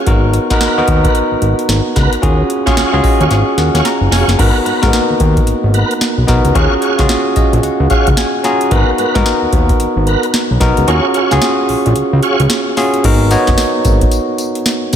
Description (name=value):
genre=R&B, new jack swing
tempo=111 BPM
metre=4/4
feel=swing 62% on 16ths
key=G# dorian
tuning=A4 = 438 Hz
part: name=bell-like tine electric piano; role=accompaniment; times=0.0-15.0 s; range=A#3 to A#5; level=-14 LUFS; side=equal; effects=none
part: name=fat analog bass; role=bass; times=0.1-15.0 s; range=E#1 to G#2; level=-14 LUFS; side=equal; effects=none
part: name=booming analog drum machine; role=drums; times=0.1-15.0 s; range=crash cymbal, hi-hat, kick drum, snare drum, tambourine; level=-16 LUFS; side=equal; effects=none
part: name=tonewheel organ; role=stabs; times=0.5-12.4 s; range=F#4 to F#5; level=-20 LUFS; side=right 2 dB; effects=chorus vibrato, fast rotary speaker, ping-pong delay
room=moderate church reverb, RT60 3.7 s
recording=dreamy mix soaked in reverb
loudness=-10 LUFS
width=side -9 dB against mid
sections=0.0-4.4 A section; 4.4-13.0 B section; 13.0-15.0 C section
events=tine electric piano fill 2.8-4.4, 7.1-8.7; drum fill 3.3-4.4; kick muted 10.9-13.0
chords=0.1 G#m9; 2.2 D#m11; 4.4 G#m9; 6.6 D#m11; 8.7 G#m9; 10.9 D#m11 (rootless); 13.0 G#m9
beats=| 0.07 0.61 1.15 1.69 | 2.23 2.77 3.31 3.85 | 4.39 4.93 5.47 6.01 | 6.55 7.09 7.63 8.18 | 8.72 9.26 9.80 10.34 | 10.88 11.42 11.96 12.50 | 13.04 13.58 14.12 14.66